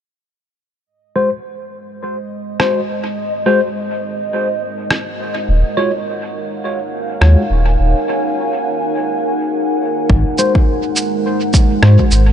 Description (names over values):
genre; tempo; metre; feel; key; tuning
ambient dub; 104 BPM; 4/4; swing 58% on 16ths; Ab mixolydian; A4 = 438 Hz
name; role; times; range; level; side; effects
deep dark ambient pad; sustained chords; 1.7-12.3 s; Ab3 to Ab5; -20 LUFS; right 1 dB; chorus, built-in reverb
bubbling stepped-filter texture; texture; 2.3-8.9 s; Eb5; -26 LUFS; right 1 dB; chorus, built-in reverb
tine electric piano; stabs; 1.2-12.0 s; Ab3 to Db5; -20 LUFS; left 2 dB; phaser, low-pass filter, dub echo
electronic rim click and shaker; drums; 2.6-12.2 s; none; -21 LUFS; equal; dub echo
warm sub bass; bass; 5.5-12.3 s; Eb1 to Ab2; -10 LUFS; equal; none
electronic kick drum; drums; 10.1-12.1 s; none; -13 LUFS; equal; overdrive
room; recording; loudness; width
light reverb, digital ambience; nothing above 11.0 kHz; -14 LUFS; side -9 dB against mid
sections
0.9-10.1 A section; 10.1-12.3 B section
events
fade-in on ambient pad 0.9-10.1; filter sweep on tine electric piano 10.1-12.3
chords
0.9 Ab7; 5.5 Ebm11; 10.1 Ab7